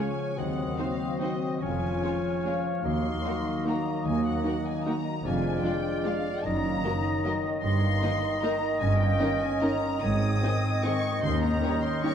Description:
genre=classical, orchestral ballroom waltz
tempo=149 BPM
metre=3/4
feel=uneven beats, rubato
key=unclear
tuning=A4 = 440 Hz
part: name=rich studio violin section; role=melody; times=0.0-12.1 s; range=Eb5 to Eb6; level=-37 LUFS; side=left 4 dB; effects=none
part: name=clear oboe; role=second line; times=0.0-12.1 s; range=Db5 to Eb5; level=-38 LUFS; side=right 1 dB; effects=none
part: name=mellow clarinet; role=second line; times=0.0-12.1 s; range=C4 to Ab4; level=-36 LUFS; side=left 2 dB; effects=none
part: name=mellow hollow concert flute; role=second line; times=0.0-12.1 s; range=Eb6 to Bb6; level=-40 LUFS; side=left 3 dB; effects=none
part: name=rich studio violin section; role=second line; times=0.0-12.1 s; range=F4 to Eb5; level=-40 LUFS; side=left 2 dB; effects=none
part: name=mellow bassoon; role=accompaniment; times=0.0-12.1 s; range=Eb3 to Db4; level=-34 LUFS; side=right 3 dB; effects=none
part: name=warm studio viola section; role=accompaniment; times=0.0-12.1 s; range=Gb3 to Gb4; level=-36 LUFS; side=right 2 dB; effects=none
part: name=mellow French horn section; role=sustained chords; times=0.0-12.1 s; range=Eb3 to Eb4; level=-35 LUFS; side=left 2 dB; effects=none
part: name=concert harp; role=arpeggios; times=0.0-12.1 s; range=F2 to F5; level=-34 LUFS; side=left 5 dB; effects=none
part: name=rich studio cello section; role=bass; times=0.4-11.6 s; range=Eb2 to Ab2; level=-31 LUFS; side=right 2 dB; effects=none
part: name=warm studio double bass section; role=bass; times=0.4-11.6 s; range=F1 to Eb2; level=-34 LUFS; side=right 2 dB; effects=none
room=wet concert hall reverb, RT60 2.1 s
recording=dark, warm production, vinyl crackle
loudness=-25 LUFS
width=side -8 dB against mid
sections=0.0-12.1 A section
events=none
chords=0.4 Cdim/Eb; 1.6 Db/F; 2.8 Ebm; 5.2 Ddim/F; 6.4 Ebm/Gb; 7.6 Eb/G; 8.8 Eb7/G; 10.0 Ab; 11.2 Eb7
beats=| 0.38 0.78 1.20 | 1.63 2.03 2.45 | 2.84 3.25 3.66 | 4.04 4.44 4.85 | 5.24 5.62 6.04 | 6.45 6.84 7.24 | 7.63 8.02 8.44 | 8.82 9.20 9.61 | 10.03 10.43 10.84 | 11.23 11.62 12.04

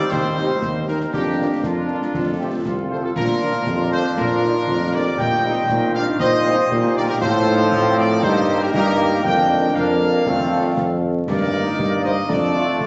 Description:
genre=military-style march for wind band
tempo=118 BPM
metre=2/4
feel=straight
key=Bb major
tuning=A4 = 440 Hz
part: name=bright trumpet section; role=melody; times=0.0-12.9 s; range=F4 to G5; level=-29 LUFS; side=equal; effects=none
part: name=hollow small flute group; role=second line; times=0.0-12.9 s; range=F4 to Eb5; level=-29 LUFS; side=equal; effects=none
part: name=warm woodwind section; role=second line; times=0.0-12.9 s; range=C4 to G5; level=-29 LUFS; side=equal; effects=none
part: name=warm trombone section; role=sustained chords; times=0.0-12.9 s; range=Eb3 to G4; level=-28 LUFS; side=equal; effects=none
part: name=clear tuba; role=bass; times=0.0-12.9 s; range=C2 to Bb2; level=-24 LUFS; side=equal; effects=none
part: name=warm euphonium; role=second line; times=0.1-12.9 s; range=Bb3 to G4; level=-31 LUFS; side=equal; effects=none
part: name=concert snare drum, concert bass drum and clash cymbals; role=drums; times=0.1-12.9 s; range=none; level=-32 LUFS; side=equal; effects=none
part: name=warm French horn section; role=accompaniment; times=0.4-12.6 s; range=F3 to Bb4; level=-28 LUFS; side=equal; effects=none
room=wet recital hall reverb, RT60 1.4 s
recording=vinyl crackle, nothing above 7.9 kHz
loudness=-19 LUFS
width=mono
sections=0.0-3.2 A section; 3.2-12.9 B section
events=none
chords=0.0 Cm7/Eb; 1.1 Bb/F; 2.1 F; 3.2 Bb; 5.2 Cm7/Bb; 7.2 F/A; 8.2 Eb/G; 9.2 Bb/F; 10.3 F; 11.3 Eb/G; 12.3 Dm/F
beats=| 0.11 0.62 | 1.13 1.63 | 2.14 2.65 | 3.15 3.66 | 4.17 4.68 | 5.18 5.69 | 6.20 6.71 | 7.22 7.72 | 8.23 8.74 | 9.25 9.76 | 10.26 10.77 | 11.28 11.79 | 12.29 12.80

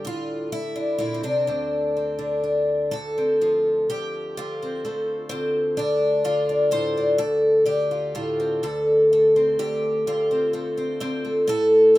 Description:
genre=folk, solo fingerstyle acoustic guitar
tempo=127 BPM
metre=3/4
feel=rubato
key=D minor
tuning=A4 = 440 Hz
part: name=picked twelve-string acoustic guitar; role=solo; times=0.0-12.0 s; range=D2 to C5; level=-20 LUFS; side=equal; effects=none
room=light reverb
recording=minimal, uncompressed stereo recording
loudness=-20 LUFS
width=side -17 dB against mid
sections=0.0-2.9 A section; 2.9-12.0 B section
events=none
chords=0.1 Dmadd9/A; 1.5 Csus2/D; 2.9 Dm7; 11.5 N.C.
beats=| 0.05 0.52 0.99 | 1.47 1.95 2.44 | 2.93 3.42 3.90 | 4.38 4.85 5.32 | 5.79 6.25 6.72 | 7.19 7.67 8.15 | 8.63 9.12 9.60 | 10.07 10.54 11.01 | 11.47 11.95

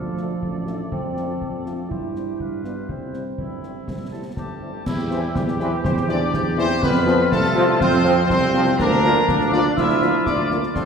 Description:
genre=military-style march for wind band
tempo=122 BPM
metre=2/4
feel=straight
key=C major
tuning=A4 = 443 Hz
part: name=mellow woodwind section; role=second line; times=0.0-10.9 s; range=C4 to D5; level=-28 LUFS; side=left 2 dB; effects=none
part: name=warm euphonium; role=second line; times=0.0-10.9 s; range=F3 to F4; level=-25 LUFS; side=right 2 dB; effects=none
part: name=mellow tuba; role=bass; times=0.0-10.9 s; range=G1 to G2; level=-24 LUFS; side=right 2 dB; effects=none
part: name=mellow trumpet section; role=melody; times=0.2-10.9 s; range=G4 to E5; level=-26 LUFS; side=left 1 dB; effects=none
part: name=mellow French horn section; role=accompaniment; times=0.2-10.6 s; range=F3 to F4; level=-28 LUFS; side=left 3 dB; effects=none
part: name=concert snare drum, concert bass drum and clash cymbals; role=drums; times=0.2-10.9 s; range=none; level=-28 LUFS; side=left 1 dB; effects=none
part: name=piccolo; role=second line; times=4.4-10.9 s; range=G5 to E6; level=-30 LUFS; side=left 4 dB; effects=none
part: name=dark trombone section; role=sustained chords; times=5.1-10.6 s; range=E3 to C4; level=-27 LUFS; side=equal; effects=none
room=wet concert hall reverb, RT60 2.1 s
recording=heard from further back in the room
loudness=-18 LUFS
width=side -6 dB against mid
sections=0.0-4.9 A section; 4.9-10.9 B section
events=none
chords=0.0 Dm; 0.9 Dm7/F; 1.9 C/G; 2.4 G7; 2.9 C; 4.9 C/E; 6.8 F; 8.8 Bb/D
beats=0.42 | 0.92 1.41 | 1.91 2.40 | 2.89 3.39 | 3.88 4.37 | 4.86 5.36 | 5.85 6.34 | 6.83 7.32 | 7.81 8.30 | 8.79 9.28 | 9.77 10.27 | 10.76

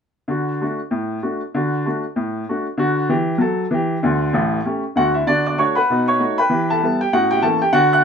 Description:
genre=jazz, stride piano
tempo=193 BPM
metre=4/4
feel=swing 59% on 8ths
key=D major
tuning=A4 = 440 Hz
part: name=clear upright piano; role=solo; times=0.3-8.0 s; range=A1 to F#6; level=-16 LUFS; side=equal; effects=none
room=moderate studio reverb, RT60 0.6 s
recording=minimal, uncompressed stereo recording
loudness=-17 LUFS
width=side -6 dB against mid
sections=0.3-5.3 A section; 5.3-8.0 B section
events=none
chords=0.3 D; 4.0 A7; 5.3 D; 5.9 B7; 6.5 Em; 7.1 A7b9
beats=| 0.30 0.61 0.92 1.23 | 1.54 1.85 2.17 2.48 | 2.79 3.10 3.41 3.72 | 4.03 4.34 4.65 4.96 | 5.27 5.58 5.89 6.20 | 6.51 6.82 7.13 7.44 | 7.75

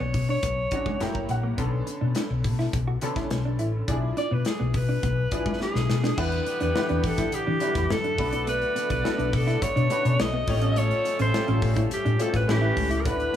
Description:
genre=polished 1980s jazz-funk pop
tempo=105 BPM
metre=4/4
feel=straight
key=B minor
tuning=A4 = 440 Hz
part: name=clear alto saxophone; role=melody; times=0.0-13.4 s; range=G4 to D#5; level=-28 LUFS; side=left 1 dB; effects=none
part: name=clear baby grand piano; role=accompaniment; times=0.0-13.4 s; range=D3 to A#5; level=-32 LUFS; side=left 1 dB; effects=ensemble chorus
part: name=mellow electric guitar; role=riff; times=0.0-13.4 s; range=G#3 to F#4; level=-34 LUFS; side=right 3 dB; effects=lush chorus
part: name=woody fretless electric bass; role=bass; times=0.0-13.3 s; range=F#1 to E3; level=-26 LUFS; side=left 1 dB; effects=lush chorus
part: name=modern studio drum kit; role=drums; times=0.1-13.4 s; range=crash cymbal, hi-hat, kick drum, snare drum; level=-30 LUFS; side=left 1 dB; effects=none
part: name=warm horn section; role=second line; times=6.2-13.4 s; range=D3 to D5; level=-36 LUFS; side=right 6 dB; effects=none
part: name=warm analog pad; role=sustained chords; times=6.2-13.4 s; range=D3 to F#5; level=-35 LUFS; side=equal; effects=chorus
room=little or no reverb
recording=none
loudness=-22 LUFS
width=side -10 dB against mid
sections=0.0-6.2 A section; 6.2-13.4 B section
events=grand piano fill 0.7-1.6; drum fill 5.6-6.2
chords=0.0 Bm69; 1.0 F#7b9; 1.6 Bm9; 3.9 E7b9/B; 6.2 Em9; 8.2 Bm9; 10.5 A7alt; 12.5 A9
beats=0.43 1.00 | 1.58 2.15 2.73 3.30 | 3.88 4.45 5.03 5.60 | 6.18 6.75 7.32 7.90 | 8.47 9.04 9.62 10.19 | 10.76 11.34 11.91 12.48 | 13.05

